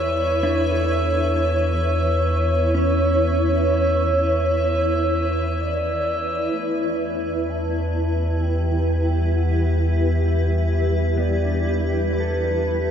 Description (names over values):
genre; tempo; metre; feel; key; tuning
ambient; 65 BPM; 4/4; straight; E dorian; A4 = 441 Hz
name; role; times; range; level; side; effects
warm velvety synth lead; melody; 0.0-12.9 s; B4 to A5; -25 LUFS; equal; chorus, ping-pong delay
granular cloud pad; sustained chords; 0.0-12.9 s; E4 to E5; -25 LUFS; equal; built-in reverb
warm sub bass; bass; 0.0-12.9 s; E2; -22 LUFS; equal; none
glass harmonica; texture; 0.0-6.5 s; E6; -30 LUFS; equal; none
mellow electric guitar; arpeggios; 0.4-12.9 s; A3 to A4; -30 LUFS; equal; warbly pitch drift, ping-pong delay
room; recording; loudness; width
wet cathedral reverb, RT60 6.1 s; in a vast, echoing space; -19 LUFS; side -8 dB against mid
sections
0.0-6.5 A section; 6.5-12.9 B section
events
fade-in on clean electric guitar 6.5-12.9; fade-in on soft synth lead 6.5-12.9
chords
0.0 Bmadd9/E; 6.5 Em7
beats
0.89 1.82 | 2.74 3.67 4.61 5.58 | 6.53 7.47 8.40 9.33 | 10.25 11.17 12.10